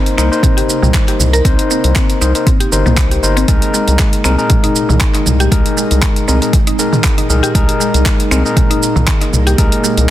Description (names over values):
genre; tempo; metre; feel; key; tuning
afro house; 118 BPM; 4/4; swing 55% on 16ths; unclear; A4 = 439 Hz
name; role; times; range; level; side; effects
ethereal airy pad; sustained chords; 0.0-10.1 s; Bb2 to Eb4; -22 LUFS; equal; ensemble chorus, built-in reverb, sidechain pumping
mallet-like synth pluck; arpeggios; 0.0-9.9 s; Eb3 to Bb4; -20 LUFS; equal; chorus, sidechain pumping, dub echo
overdriven tine electric piano; stabs; 0.0-10.1 s; Eb4 to C5; -18 LUFS; left 3 dB; sidechain pumping, dub echo
deep house drum kit; drums; 0.1-10.1 s; finger snaps, handclaps, hi-hat, shaker, toms; -18 LUFS; right 1 dB; soft clipping on snare
round analog bass; bass; 0.2-10.1 s; G1 to C2; -13 LUFS; equal; tube saturation, sidechain pumping
electronic kick drum; drums; 0.4-9.7 s; none; -14 LUFS; equal; none
room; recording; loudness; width
digital ambience; dense, heavily limited modern master; -10 LUFS; side -13 dB against mid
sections
0.0-10.1 A section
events
none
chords
0.0 Cm7; 3.5 Absus2/C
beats
0.43 0.94 | 1.45 1.96 2.47 2.98 | 3.48 3.99 4.50 5.01 | 5.52 6.03 6.53 7.04 | 7.55 8.06 8.57 9.08 | 9.59 10.09